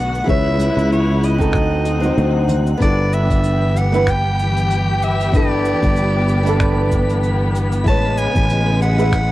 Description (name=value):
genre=sunset chillout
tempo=95 BPM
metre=4/4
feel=swing 56% on 16ths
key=unclear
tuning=A4 = 438 Hz
part: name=raspy soprano saxophone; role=melody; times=0.0-9.3 s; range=C#5 to A5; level=-23 LUFS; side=equal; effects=cassette tape, analog delay
part: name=warm studio string section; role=sustained chords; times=0.0-9.3 s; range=C#3 to G4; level=-24 LUFS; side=left 2 dB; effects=cassette tape
part: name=sustaining fretless electric bass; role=bass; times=0.0-9.3 s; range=G1 to D2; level=-18 LUFS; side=equal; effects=tube saturation
part: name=twinkling granular texture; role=texture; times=0.0-9.3 s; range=F#5 to B6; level=-33 LUFS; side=right 1 dB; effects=built-in reverb, cassette tape
part: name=soft brush drum kit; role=drums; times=0.1-9.3 s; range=cabasa, finger snaps, hi-hat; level=-33 LUFS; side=equal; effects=cassette tape
part: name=flamenco guitar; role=accompaniment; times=0.2-9.1 s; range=G#3 to E5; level=-21 LUFS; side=moving between left 3 dB and right 4 dB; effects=auto-pan, cassette tape, analog delay
part: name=electronic kick drum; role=drums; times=0.3-9.3 s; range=none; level=-19 LUFS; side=equal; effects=cassette tape
part: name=congas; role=percussion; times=0.3-2.6 s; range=none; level=-29 LUFS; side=right 1 dB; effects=none
room=light reverb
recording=home recording on cassette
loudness=-14 LUFS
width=side -16 dB against mid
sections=0.0-2.8 A section; 2.8-9.3 B section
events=none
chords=0.3 C#m7; 1.5 D7b9; 2.8 G69; 7.9 Amaj9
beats=| 0.28 0.91 1.54 2.17 | 2.81 3.44 4.07 4.70 | 5.33 5.96 6.60 7.23 | 7.86 8.49 9.12